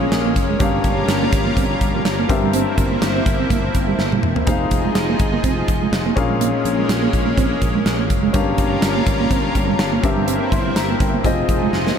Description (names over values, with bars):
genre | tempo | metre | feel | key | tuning
1980s-style pop | 124 BPM | 4/4 | swing 55% on 16ths | F minor | A4 = 440 Hz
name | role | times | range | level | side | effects
clear baby grand piano | accompaniment | 0.0-12.0 s | G2 to C6 | -23 LUFS | left 4 dB | none
lush unison pad | sustained chords | 0.0-12.0 s | F3 to Bb4 | -23 LUFS | left 1 dB | chorus
mellow electric guitar | riff | 0.0-11.9 s | G3 to C4 | -24 LUFS | right 7 dB | lush chorus, ping-pong delay
sustaining fretless electric bass | bass | 0.0-11.9 s | E1 to Bb1 | -24 LUFS | equal | none
gated 80s drum kit | drums | 0.1-12.0 s | hi-hat, kick drum, snare drum, toms | -20 LUFS | equal | none
room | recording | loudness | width
moderate huge ambient reverb, RT60 8.7 s | dreamy mix soaked in reverb | -16 LUFS | side -7 dB against mid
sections
0.0-12.0 A section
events
drum fill 4.0-4.5, 11.7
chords
0.0 Bbm7; 0.6 Gm7b5; 2.3 C7/G; 4.5 Fm7; 6.2 Bbm7; 8.3 Gm7b5; 10.0 C7/G; 11.2 Fm7